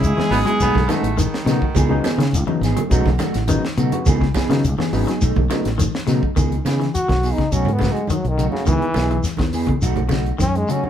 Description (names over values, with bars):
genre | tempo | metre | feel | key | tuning
afrobeat | 104 BPM | 4/4 | straight | C# minor | A4 = 440 Hz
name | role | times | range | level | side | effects
mellow horn section | melody | 0.0-1.4 s | G#3 to G#4 | -22 LUFS | left 1 dB | none
bright trumpet | second line | 0.0-0.6 s | E4 | -31 LUFS | right 3 dB | none
overdriven tine electric piano | accompaniment | 0.0-6.2 s | C#3 to F#4 | -26 LUFS | left 4 dB | none
electric guitar at the edge of break-up | arpeggios | 0.0-10.9 s | C#3 to F#3 | -25 LUFS | left 5 dB | spring reverb
fingered electric bass | bass | 0.0-10.9 s | G#1 to C#3 | -21 LUFS | equal | none
tight funk drum kit | drums | 0.0-10.8 s | hi-hat, kick drum, snare drum | -24 LUFS | equal | none
shekere | percussion | 0.0-10.8 s | none | -25 LUFS | left 2 dB | none
mellow electric guitar | stabs | 0.2-10.9 s | E3 to G#4 | -25 LUFS | right 4 dB | none
congas | percussion | 0.2-10.9 s | none | -27 LUFS | right 6 dB | none
clear baritone saxophone | second line | 0.3-2.3 s | D#3 to B3 | -26 LUFS | right 4 dB | tape echo
bright trombone | melody | 6.9-10.9 s | C#3 to F#4 | -22 LUFS | left 1 dB | none
room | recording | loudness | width
moderate studio reverb, RT60 0.8 s | band playing live in one room | -16 LUFS | side -10 dB against mid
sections
0.0-6.4 A section; 6.4-10.9 B section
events
trombone solo 6.4-10.9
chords
0.0 C#m9; 0.6 B7; 1.8 C#m9; 2.9 B7; 4.1 C#m9; 5.2 B7; 6.4 C#m9; 7.5 B7; 8.7 C#m9; 9.8 B7